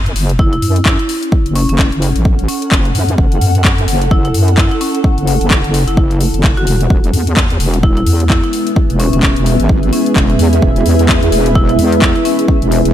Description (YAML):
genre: bass house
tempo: 129 BPM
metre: 4/4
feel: swing 59% on 16ths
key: F# minor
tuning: A4 = 440 Hz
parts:
  - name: wobble bass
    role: bass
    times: 0.0-12.9 s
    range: E1 to F#2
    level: -14 LUFS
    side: equal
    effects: chorus, tube saturation, sidechain pumping
  - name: granular cloud pad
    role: texture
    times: 0.7-12.9 s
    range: B3 to F#5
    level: -20 LUFS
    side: left 1 dB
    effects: built-in reverb, sidechain pumping
  - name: house drum kit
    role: drums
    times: 0.1-12.9 s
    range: handclaps, hi-hat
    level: -19 LUFS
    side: left 2 dB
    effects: overdrive
  - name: marimba with medium hard mallets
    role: melody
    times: 0.4-12.4 s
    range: C#4 to F#4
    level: -20 LUFS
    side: equal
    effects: ping-pong delay
  - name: electronic kick drum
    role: drums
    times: 0.4-12.6 s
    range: none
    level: -13 LUFS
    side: equal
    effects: overdrive
  - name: dark analog pad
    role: sustained chords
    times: 6.9-12.9 s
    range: G#3 to B4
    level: -18 LUFS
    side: right 1 dB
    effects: chorus, sidechain pumping
room: light reverb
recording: none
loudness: -10 LUFS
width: side -11 dB against mid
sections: 0.0-12.9 A section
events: filter sweep on wobble bass 0.0-12.9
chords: 0.0 F#m; 6.9 E